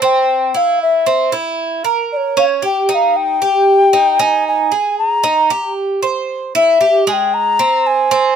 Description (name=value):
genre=latin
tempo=115 BPM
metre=4/4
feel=straight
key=unclear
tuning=A4 = 439 Hz
part: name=mellow alto ocarina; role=melody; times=0.0-8.4 s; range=Db5 to Bb5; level=-13 LUFS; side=left 2 dB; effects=none
part: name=Cuban tres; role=arpeggios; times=0.0-8.4 s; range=Ab3 to C5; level=-16 LUFS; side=right 5 dB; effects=none
room=light reverb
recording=close, detailed microphones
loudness=-12 LUFS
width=side -8 dB against mid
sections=0.0-8.4 A section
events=none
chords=0.0 C; 2.1 Gdim; 3.2 Eb; 4.2 Ab5; 5.2 Eb; 6.3 C/E; 7.3 Abadd9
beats=| 0.02 0.54 1.06 1.59 | 2.11 2.63 3.15 3.68 | 4.20 4.72 5.24 5.77 | 6.29 6.81 7.33 7.86